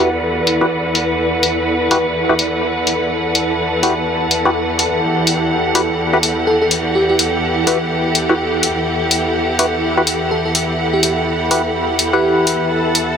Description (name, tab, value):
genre	bass house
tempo	125 BPM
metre	4/4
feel	swing 60% on 16ths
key	E minor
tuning	A4 = 438 Hz
part	rich studio string section	sustained chords	0.0-13.2 s	E2 to F#5	-18 LUFS	equal	low-pass filter
part	percussive organ stab	stabs	0.0-13.2 s	E4 to F#5	-18 LUFS	left 1 dB	chorus, phaser, digital delay
part	ethereal airy pad	texture	0.0-13.2 s	E4 to B5	-20 LUFS	equal	ensemble chorus, built-in reverb
part	electronic hi-hat	drums	0.5-13.1 s	none	-16 LUFS	left 2 dB	low-pass filter on hats, low-pass filter on room
part	bell-like FM electric piano	melody	6.5-7.2, 10.3-12.6 s	G4 to A4	-19 LUFS	equal	chorus, tremolo, digital delay
room	moderate plate reverb, RT60 2.1 s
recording	none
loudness	-14 LUFS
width	side -7 dB against mid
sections	0.0-13.2 A section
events	filter sweep on synth stab 0.0-13.2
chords	0.0 Emadd9